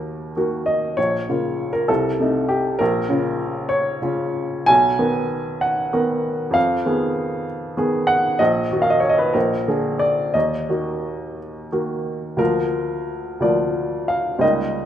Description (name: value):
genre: classical, romantic character piece for solo piano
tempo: 58-67 BPM (dotted quarters)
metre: 6/8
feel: rubato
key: unclear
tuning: A4 = 440 Hz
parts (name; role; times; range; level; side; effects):
- warm upright piano; solo; 0.0-14.9 s; Bb1 to Ab5; -18 LUFS; equal; none
room: moderate recital hall reverb, RT60 1.6 s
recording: none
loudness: -18 LUFS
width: side -10 dB against mid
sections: 0.0-12.4 A section; 12.4-14.9 B section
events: none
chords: 0.0 Ebm; 1.0 Bbm; 1.9 Adim/C; 2.8 Bbm; 4.7 Bmaj7; 6.6 Fm7b5; 8.4 Ebm/Bb; 9.4 Bb7; 10.3 Ebm; 12.4 Bb/D